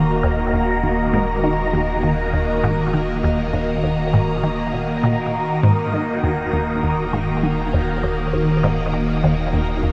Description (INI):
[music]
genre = ambient, sequencer-driven space music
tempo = 100 BPM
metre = 4/4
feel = straight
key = Eb minor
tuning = A4 = 440 Hz
[part]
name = phased string machine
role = sustained chords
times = 0.0-9.9 s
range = Eb3 to Bb5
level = -22 LUFS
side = equal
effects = ensemble chorus, phaser, shimmer reverb
[part]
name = resonant blip pluck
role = riff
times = 0.0-9.9 s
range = Eb2 to Eb3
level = -24 LUFS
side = equal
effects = phaser, tape echo
[part]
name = warm sub bass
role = bass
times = 0.0-9.9 s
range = Eb1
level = -30 LUFS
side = equal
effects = none
[sound]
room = wet huge ambient reverb, RT60 8.8 s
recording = none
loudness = -20 LUFS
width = mono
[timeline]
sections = 0.0-9.9 A section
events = none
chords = 0.0 Ebm